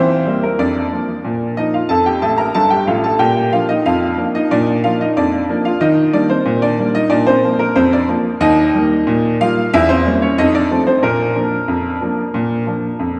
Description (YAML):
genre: ragtime piano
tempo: 92 BPM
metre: 2/4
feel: straight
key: Bb major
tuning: A4 = 440 Hz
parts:
  - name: bright upright piano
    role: solo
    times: 0.0-13.2 s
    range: G1 to Bb5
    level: -16 LUFS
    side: equal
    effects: none
room: wet church reverb, RT60 3.4 s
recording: recorded in a church or concert hall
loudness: -15 LUFS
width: mono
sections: 0.0-13.2 A section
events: upright piano fill 2.2-3.2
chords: 0.0 Edim; 0.6 Bb/F; 1.9 F; 3.2 Bb; 5.8 Eb; 7.1 Bb; 8.4 Eb; 9.7 Edim7; 10.4 F7; 11.0 Bb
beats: | 0.59 1.25 | 1.90 2.56 | 3.21 3.87 | 4.52 5.17 | 5.82 6.47 | 7.12 7.78 | 8.43 9.08 | 9.72 10.38 | 11.03 11.69 | 12.34 13.00